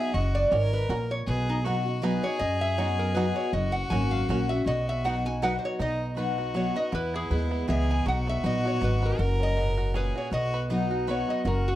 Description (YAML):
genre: bluegrass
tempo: 159 BPM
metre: 3/4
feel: swing 56% on 8ths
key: B major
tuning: A4 = 440 Hz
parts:
  - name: lap resonator guitar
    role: melody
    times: 0.0-11.8 s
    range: D#4 to G#5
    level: -31 LUFS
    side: equal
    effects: none
  - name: clear fiddle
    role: second line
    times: 0.0-11.8 s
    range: D#4 to A#4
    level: -34 LUFS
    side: left 1 dB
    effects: none
  - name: picked steel-string acoustic guitar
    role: accompaniment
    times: 0.0-11.8 s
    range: E2 to F#4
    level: -30 LUFS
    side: left 1 dB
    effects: none
  - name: upright bass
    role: bass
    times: 0.1-11.8 s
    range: F#1 to F#2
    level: -28 LUFS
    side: equal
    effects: none
  - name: bluegrass banjo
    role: melody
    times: 0.5-11.8 s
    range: B3 to B4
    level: -36 LUFS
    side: right 5 dB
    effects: none
room: light reverb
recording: dark, warm production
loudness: -24 LUFS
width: side -14 dB against mid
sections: 0.0-5.8 A section; 5.8-11.8 B section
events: resonator guitar played with a steel bar solo 0.0-5.8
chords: 0.1 F#; 1.3 B; 3.5 F#; 4.7 B; 6.9 E; 8.1 B; 9.2 F#; 10.3 B